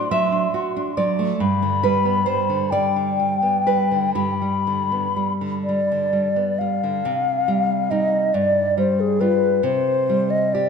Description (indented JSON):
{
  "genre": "romantic duo for flute and classical guitar",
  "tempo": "39-47 BPM (dotted quarters)",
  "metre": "6/8",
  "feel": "rubato",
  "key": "unclear",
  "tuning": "A4 = 441 Hz",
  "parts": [
    { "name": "mellow hollow silver concert flute", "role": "melody", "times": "0.0-10.7 s", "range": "Ab4 to C6", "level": "-20 LUFS", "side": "left 3 dB", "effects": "none" },
    { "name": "nylon-string guitar", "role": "accompaniment", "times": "0.0-10.7 s", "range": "G2 to E5", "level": "-22 LUFS", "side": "right 3 dB", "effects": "none" }
  ],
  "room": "moderate scoring stage reverb, RT60 2.0 s",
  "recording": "recorded in a church or concert hall",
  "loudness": "-18 LUFS",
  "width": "side -6 dB against mid",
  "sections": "0.0-7.0 A section; 7.0-10.7 B section",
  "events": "none",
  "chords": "0.0 D7/A; 1.4 G; 7.0 Cm; 8.3 G7; 9.6 C5",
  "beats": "0.12 | 1.41 2.74 | 4.16 5.66 | 7.04 8.34 | 9.63"
}